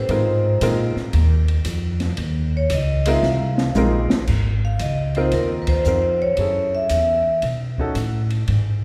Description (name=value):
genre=jazz, small-group swing and bop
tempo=114 BPM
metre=4/4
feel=swing 67% on 8ths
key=Ab major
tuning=A4 = 440 Hz
part: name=vibraphone with medium hard mallets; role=melody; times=0.0-7.4 s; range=Bb4 to F5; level=-24 LUFS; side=equal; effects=none
part: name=upright bass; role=bass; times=0.0-8.8 s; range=Ab1 to B2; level=-23 LUFS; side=equal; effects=none
part: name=clear baby grand piano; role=accompaniment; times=0.1-8.0 s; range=Ab3 to Bb4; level=-28 LUFS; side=equal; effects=none
part: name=open jazz drum kit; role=drums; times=0.1-8.6 s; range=crash cymbal, hi-hat, kick drum, ride cymbal, snare drum, toms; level=-29 LUFS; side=equal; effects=none
room=wet concert hall reverb, RT60 2.0 s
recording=recorded in a church or concert hall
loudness=-20 LUFS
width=mono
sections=0.0-4.3 A section; 4.3-8.8 B section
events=vibraphone solo 0.0-4.3; drum fill 3.2-4.3; band accent 5.6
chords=0.1 Ab69; 6.4 Gbm7; 7.4 B9